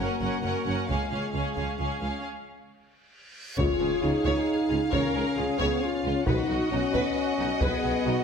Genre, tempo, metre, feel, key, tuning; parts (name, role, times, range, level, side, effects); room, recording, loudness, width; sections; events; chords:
cinematic, epic orchestral film score; 134 BPM; 3/4; straight; Db mixolydian; A4 = 443 Hz
warm symphonic violin section; melody; 0.0-8.2 s; F5 to Gb5; -36 LUFS; left 3 dB
rich symphonic violin section; second line; 0.0-8.2 s; Eb4 to Eb5; -33 LUFS; left 1 dB
rich symphonic viola section; accompaniment; 0.0-8.2 s; Db4 to Bb4; -33 LUFS; right 2 dB
mellow French horn section; sustained chords; 0.0-8.2 s; Ab3 to Gb4; -28 LUFS; left 3 dB
rich symphonic double bass section; bass; 0.0-8.1 s; Gb1 to Db2; -35 LUFS; right 3 dB
warm chamber cello section; bass; 0.0-8.1 s; Db2 to Db3; -35 LUFS; right 2 dB
taiko ensemble; drums; 0.9-8.0 s; -33 LUFS; equal
reverse cymbal and impact; sound effects; 3.2-4.9 s; -41 LUFS; equal
warm tuba; bass; 3.6-8.2 s; Cb2 to Db2; -35 LUFS; right 3 dB
moderate scoring stage reverb, RT60 1.6 s; -24 LUFS; side -6 dB against mid
0.0-3.6 A section; 3.6-8.2 B section
build-up 0.0-3.6; break 2.2-3.6; drum fill 2.9-3.6; reverse cymbal 3.2-3.6; impact 3.6-4.9
0.0 Gb; 0.9 Db; 2.2 N.C.; 3.6 Db; 6.3 Cb